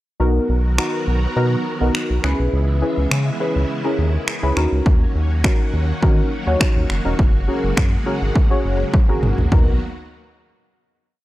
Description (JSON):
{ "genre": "dance-pop", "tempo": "103 BPM", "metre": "4/4", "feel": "straight", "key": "B major", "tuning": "A4 = 439 Hz", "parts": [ { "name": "deep mellow chord stab", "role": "accompaniment", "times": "0.2-9.8 s", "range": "B3 to C#5", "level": "-23 LUFS", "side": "equal", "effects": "chorus, sidechain pumping" }, { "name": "string machine, violins", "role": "sustained chords", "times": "0.2-9.8 s", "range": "C#3 to A#4", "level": "-27 LUFS", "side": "equal", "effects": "ensemble chorus, sidechain pumping" }, { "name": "round analog bass", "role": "bass", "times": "0.2-9.8 s", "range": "E1 to D#3", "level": "-19 LUFS", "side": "equal", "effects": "sidechain pumping" }, { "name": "punchy analog drum machine", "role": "drums", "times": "0.8-9.7 s", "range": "finger snaps, kick drum, toms", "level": "-17 LUFS", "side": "equal", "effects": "none" } ], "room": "digital ambience", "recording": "dry, gritty hardware recording", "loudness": "-16 LUFS", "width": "side -16 dB against mid", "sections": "0.2-9.5 verse; 9.5-11.2 final chord", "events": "drum fill 8.9-9.5", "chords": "0.2 Bmaj7; 2.2 C#m7; 4.6 D#m7; 7.2 F#add9; 9.5 Bmaj7" }